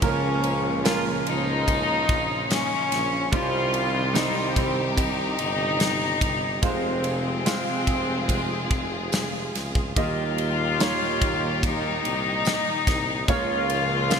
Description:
pop ballad; 72 BPM; 4/4; straight; Eb mixolydian; A4 = 439 Hz
rich chamber cello section; second line; 0.0-14.2 s; C4 to F4; -26 LUFS; left 3 dB; digital delay
warm concert grand piano; accompaniment; 0.0-14.2 s; C3 to Eb5; -28 LUFS; right 3 dB; wide subtle chorus
warm studio string section; sustained chords; 0.0-14.2 s; Bb2 to Ab4; -31 LUFS; left 1 dB
mellow tuba; bass; 0.0-14.2 s; F1 to Eb2; -31 LUFS; equal
modern studio drum kit; drums; 0.0-14.2 s; kick drum, ride cymbal, snare drum; -28 LUFS; equal; gated reverb
tambourine; percussion; 0.8-14.2 s; -41 LUFS; left 8 dB
moderate lush hall reverb, RT60 2.9 s; bright 1980s-style digital production; -22 LUFS; side -6 dB against mid
0.0-14.2 A section
0.0 Bbm/Db; 3.3 Cm; 6.6 Fm; 10.0 Eb; 13.3 Bbm/Db
| 0.02 0.85 1.68 2.51 | 3.33 4.15 4.98 5.80 | 6.63 7.46 8.29 9.12 | 9.96 10.80 11.63 12.46 | 13.29 14.11

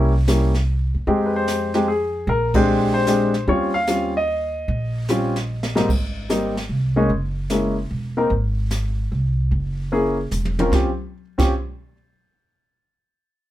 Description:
jazz piano trio; 149 BPM; 3/4; swing 67% on 8ths; Eb mixolydian; A4 = 440 Hz
warm grand piano; melody; 0.0-11.5 s; Ab2 to F5; -20 LUFS; left 1 dB
upright bass; bass; 0.0-11.5 s; E1 to F2; -23 LUFS; equal
jazz brush drum kit; drums; 0.3-11.5 s; brushed snare drum, crash cymbal, hi-hat, kick drum, ride cymbal, snare drum, toms; -25 LUFS; right 1 dB
moderate small room reverb, RT60 0.5 s; -18 LUFS; side -14 dB against mid
0.0-5.9 A section; 5.9-10.7 B section; 10.7-11.9 C section
band accent 2.5; drum fill 5.5-5.9, 10.3-10.7
0.0 C7b9; 1.1 Fm7; 2.3 Bb13; 3.5 Eb13; 5.9 Abmaj9; 6.7 Bbm11/C; 7.1 Gb9; 7.9 C7#9/E; 8.3 N.C.; 9.5 Gb9; 10.3 Dbm69/Fb; 10.7 Eb13
0.27 0.67 | 1.07 1.48 1.88 | 2.28 2.68 3.08 | 3.48 3.89 4.29 | 4.69 5.09 5.49 | 5.89 6.29 6.70 | 7.10 7.50 7.90 | 8.30 8.71 9.11 | 9.51 9.91 10.31 | 10.72 11.12

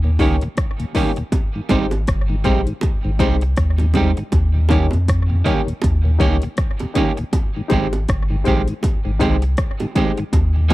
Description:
roots reggae; 80 BPM; 4/4; swing 58% on 16ths; Ab major; A4 = 442 Hz
mellow tonewheel organ; accompaniment; 0.0-10.7 s; Eb2 to G4; -25 LUFS; left 1 dB; slow rotary speaker, slapback echo
barky reed electric piano; stabs; 0.0-10.7 s; Eb4 to Db5; -24 LUFS; left 6 dB; overdrive, fast tremolo
warm sub bass; bass; 0.0-10.7 s; G1 to F2; -17 LUFS; equal
electric guitar at the edge of break-up; accompaniment; 0.2-10.7 s; Eb3 to G4; -24 LUFS; right 5 dB; harmonic tremolo, dub echo
techno drum kit; drums; 0.2-10.7 s; hi-hat, kick drum, rim click; -20 LUFS; equal
bongos; percussion; 1.3-10.7 s; -26 LUFS; right 4 dB
little or no reverb; dry, close 1970s-style studio recording; -16 LUFS; side -17 dB against mid
0.0-10.7 A section
0.0 Eb7; 1.3 Abmaj7; 4.3 Eb7; 7.3 Abmaj7
0.57 | 1.32 2.07 2.82 3.57 | 4.32 5.07 5.82 6.57 | 7.32 8.07 8.82 9.57 | 10.32

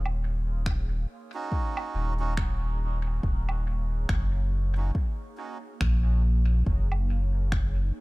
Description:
ambient dub; 70 BPM; 4/4; swing 59% on 16ths; Eb minor; A4 = 438 Hz
airy breathy pad; sustained chords; 0.0-8.0 s; Bb3 to F5; -45 LUFS; right 3 dB; chorus, phaser
warm sub bass; bass; 0.0-7.9 s; Eb1 to Bb1; -25 LUFS; equal
electronic woodblock and finger snaps; drums; 0.1-7.7 s; -39 LUFS; right 2 dB; overdrive, dub echo
electronic kick drum; drums; 0.7-7.7 s; -29 LUFS; equal; overdrive
melodica; stabs; 1.3-5.6 s; Db4 to Gb4; -38 LUFS; right 4 dB; dub echo
little or no reverb; dark, warm production; -25 LUFS; side -23 dB against mid
0.0-8.0 A section
fade-in on analog synth pad 0.0-8.0
0.0 Ebm7; 6.7 Gbmaj9
0.66 1.52 2.38 | 3.23 4.09 4.95 5.80 | 6.66 7.52

